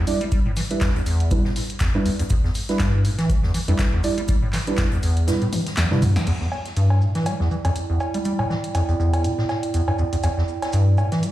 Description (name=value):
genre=acid house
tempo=121 BPM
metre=4/4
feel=swing 56% on 16ths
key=E minor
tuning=A4 = 441 Hz
part: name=acid bass, square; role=riff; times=0.0-11.3 s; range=E2 to G3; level=-21 LUFS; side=equal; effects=tube saturation, lush chorus, cassette tape, analog delay
part: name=deep mellow chord stab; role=stabs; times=0.1-6.0 s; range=G3 to D5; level=-26 LUFS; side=right 2 dB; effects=chorus, analog delay
part: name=punchy analog drum machine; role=drums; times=0.1-11.3 s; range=cowbell, crash cymbal, handclaps, hi-hat, snare drum, toms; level=-27 LUFS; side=left 1 dB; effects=none
part: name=swinging big-band drum kit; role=drums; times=0.1-11.3 s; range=hi-hat, shaker, snare drum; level=-39 LUFS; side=equal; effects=sidechain pumping on hats, high-pass filter on hats, low-pass filter on hats, high-pass filter on snare, low-pass filter on snare, sidechain pumping on perc, high-pass filter on perc, low-pass filter on perc, high-pass filter on room, low-pass filter on room
part: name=electronic kick drum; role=drums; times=0.3-4.9 s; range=none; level=-23 LUFS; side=equal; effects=none
part: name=warbly tape-like pad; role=texture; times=7.0-11.3 s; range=E4 to G5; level=-28 LUFS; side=right 5 dB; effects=chorus, built-in reverb, sidechain pumping
room=light reverb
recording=played on a big sound system in a bare room, large studio reverb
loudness=-19 LUFS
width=side -14 dB against mid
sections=0.0-6.3 A section; 6.3-11.3 B section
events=filter sweep on acid bass 0.0-6.3; kick drops out 5.3-6.3; drum fill 5.5-6.3; band accent 6.1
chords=0.0 Em7